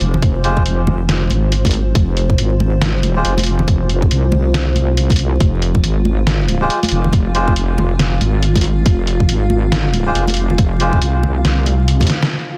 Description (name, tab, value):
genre	deep dubstep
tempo	139 BPM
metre	4/4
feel	swing 60% on 16ths, half-time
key	F minor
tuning	A4 = 441 Hz
part	granular cloud pad	sustained chords	0.0-12.6 s	F4 to F5	-27 LUFS	equal	built-in reverb
part	wobble bass	bass	0.0-12.1 s	F1 to C2	-18 LUFS	equal	chorus, tube saturation
part	trip hop sampler-style drum kit	drums	0.0-12.3 s	hi-hat, snare drum	-23 LUFS	equal	small room ambience
part	congas	percussion	0.1-12.1 s	none	-26 LUFS	equal	none
part	electronic kick drum	drums	0.2-12.1 s	none	-19 LUFS	equal	small room ambience
part	melodica	stabs	0.4-3.3, 6.6-11.0 s	Ab3 to C5	-25 LUFS	equal	vintage 12-bit sampler grit, dub echo
room	light reverb, digital ambience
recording	dense, heavily limited modern master, vinyl crackle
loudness	-15 LUFS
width	mono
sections	0.0-12.3 A section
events	drum fill 12.1; band accent 12.2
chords	0.0 Fm